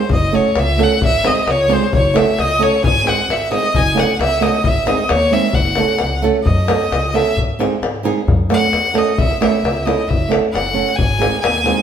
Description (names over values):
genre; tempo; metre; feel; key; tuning
balkan folk, Balkan wedding band; 132 BPM; 2/4; straight; F# dorian sharp4; A4 = 440 Hz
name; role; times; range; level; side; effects
clear violin; melody; 0.0-11.8 s; B#4 to G#5; -18 LUFS; equal; none
flamenco guitar; accompaniment; 0.0-11.8 s; G#3 to A4; -18 LUFS; right 5 dB; none
davul; percussion; 0.0-11.8 s; none; -20 LUFS; left 3 dB; none
upright bass; bass; 0.1-11.7 s; F#1 to G#2; -21 LUFS; equal; none
room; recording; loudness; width
wet stone room reverb, RT60 1.2 s; band playing live in one room; -13 LUFS; side -8 dB against mid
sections
0.0-6.5 A section; 6.5-11.8 B section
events
violin solo 6.5-11.8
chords
0.1 F#m; 1.0 G#; 1.9 F#m; 2.8 G#; 3.7 F#m; 4.6 G#; 5.6 F#m; 7.4 G#; 8.3 F#m; 9.2 A; 10.1 F#m; 11.0 G#